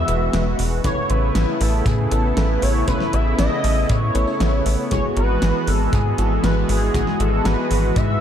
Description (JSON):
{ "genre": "synthwave", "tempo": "118 BPM", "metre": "4/4", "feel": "straight", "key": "E major", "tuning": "A4 = 440 Hz", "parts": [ { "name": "expressive portamento lead", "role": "melody", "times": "0.0-8.2 s", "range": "G#4 to E5", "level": "-24 LUFS", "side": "equal", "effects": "analog chorus, ping-pong delay, shimmer reverb" }, { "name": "warm analog pad", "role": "sustained chords", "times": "0.0-8.2 s", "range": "C#3 to F#4", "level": "-24 LUFS", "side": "equal", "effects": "chorus, tremolo, sidechain pumping, shimmer reverb" }, { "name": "FM electric piano with soft pad layer", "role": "stabs", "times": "0.0-8.2 s", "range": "G#3 to C#5", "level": "-28 LUFS", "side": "left 3 dB", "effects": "chorus, diffuse ambient delay, shimmer reverb" }, { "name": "tight sequencer bass", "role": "bass", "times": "0.0-8.2 s", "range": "E1 to A2", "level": "-20 LUFS", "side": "equal", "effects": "sidechain pumping" }, { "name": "downlifter", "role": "sound effects", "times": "0.0-0.8 s", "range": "none", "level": "-39 LUFS", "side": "equal", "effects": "none" }, { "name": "pop drum kit", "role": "drums", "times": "0.1-8.1 s", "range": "hi-hat, snare drum", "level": "-26 LUFS", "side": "right 1 dB", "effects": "overdrive" }, { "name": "kick drum", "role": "drums", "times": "0.8-8.1 s", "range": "none", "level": "-23 LUFS", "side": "equal", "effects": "none" } ], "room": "moderate lush hall reverb, RT60 1.6 s, digital ambience", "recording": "dreamy mix soaked in reverb", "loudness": "-17 LUFS", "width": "side -9 dB against mid", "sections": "0.0-8.2 A section", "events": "none", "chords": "0.0 Eadd9; 0.8 Aadd9; 4.9 Eadd9/G#", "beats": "0.33 | 0.84 1.35 1.86 2.37 | 2.88 3.38 3.89 4.40 | 4.91 5.42 5.93 6.44 | 6.95 7.45 7.96" }